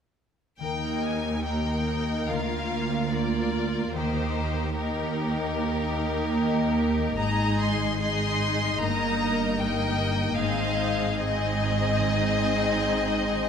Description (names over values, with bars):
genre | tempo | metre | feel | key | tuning
classical, slow romantic movement for symphony orchestra | 74 BPM | 4/4 | rubato | Eb major | A4 = 440 Hz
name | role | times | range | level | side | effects
rich chamber violin section | melody | 0.6-13.5 s | Bb4 to C6 | -31 LUFS | left 3 dB | none
rich chamber violin section | second line | 0.6-13.5 s | G4 to Eb5 | -31 LUFS | left 2 dB | none
rich studio viola section | accompaniment | 0.6-13.5 s | Ab3 to F4 | -30 LUFS | right 1 dB | none
concert harp | arpeggios | 0.6-13.5 s | G2 to G5 | -33 LUFS | left 8 dB | none
clear chamber double bass section | bass | 0.6-13.5 s | G1 to Eb2 | -31 LUFS | right 4 dB | none
rich symphonic cello section | bass | 0.6-13.5 s | D2 to Ab2 | -32 LUFS | right 3 dB | none
room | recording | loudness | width
wet scoring stage reverb, RT60 1.6 s | none | -24 LUFS | side -7 dB against mid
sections
0.6-13.5 A section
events
none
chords
0.6 Eb; 2.3 Bb/D; 3.9 Eb; 7.2 Ab; 8.8 Eb/G; 10.4 Ab